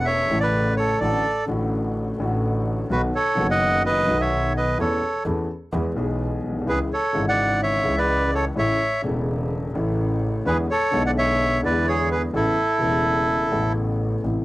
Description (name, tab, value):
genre	tango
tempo	127 BPM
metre	4/4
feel	rubato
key	A major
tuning	A4 = 440 Hz
part	bandoneon	melody	0.0-13.7 s	E4 to F#5	-21 LUFS	right 1 dB	none
part	warm upright piano	accompaniment	0.0-14.4 s	E1 to A4	-25 LUFS	left 2 dB	cassette tape
part	clear double bass	bass	0.0-14.4 s	E1 to E2	-26 LUFS	equal	transformer saturation
room	moderate booth ambience, RT60 0.2 s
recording	home recording on cassette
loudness	-20 LUFS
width	side -18 dB against mid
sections	0.0-14.2 A section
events	none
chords	0.0 A; 1.0 Dmaj7/A; 2.9 B; 4.8 A/E; 5.7 E; 6.7 C#m; 8.6 A; 10.5 E7; 12.3 Aadd9